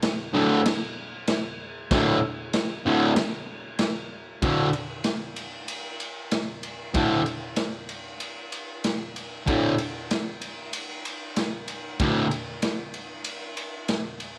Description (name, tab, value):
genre	garage rock duo or trio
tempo	95 BPM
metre	4/4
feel	straight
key	unclear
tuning	A4 = 439 Hz
part	raw garage drum kit	drums	0.0-14.4 s	crash cymbal, kick drum, ride cymbal, snare drum	-31 LUFS	equal	none
part	fuzz guitar	riff	0.3-12.3 s	D2 to D3	-26 LUFS	equal	distortion
room	moderate echo chamber reverb, RT60 2.3 s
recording	none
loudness	-27 LUFS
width	mono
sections	0.0-4.4 A section; 4.4-14.4 B section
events	none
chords	0.0 D5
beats	0.04 0.67 1.30 | 1.92 2.55 3.18 3.81 | 4.44 5.07 5.70 6.33 | 6.96 7.59 8.22 8.85 | 9.48 10.11 10.74 11.37 | 12.01 12.64 13.27 13.90